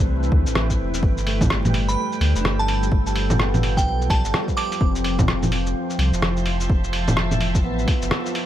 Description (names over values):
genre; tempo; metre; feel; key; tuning
future garage; 127 BPM; 4/4; swing 61% on 16ths; unclear; A4 = 440 Hz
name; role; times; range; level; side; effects
electric guitar at the edge of break-up; accompaniment; 0.0-8.5 s; G3 to A4; -30 LUFS; left 1 dB; sidechain pumping, digital delay
deep dark ambient pad; sustained chords; 0.0-8.5 s; F3 to C6; -27 LUFS; equal; chorus, built-in reverb, sidechain pumping
warm sub bass; bass; 0.0-8.1 s; E1 to D2; -23 LUFS; equal; sidechain pumping
lo-fi sampler-style drum kit; drums; 0.2-8.5 s; bongos, hi-hat, rim click, shaker; -24 LUFS; equal; none
electronic kick drum; drums; 0.3-8.0 s; none; -21 LUFS; equal; none
glassy synth bell; melody; 1.9-4.9 s; G5 to D6; -28 LUFS; right 2 dB; chorus, digital delay
room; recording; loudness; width
little or no reverb; vinyl crackle; -18 LUFS; side -12 dB against mid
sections
0.0-8.5 A section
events
break 8.1-8.5; band accent 8.1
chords
0.0 Am7; 1.0 G7; 4.8 Fmaj9#11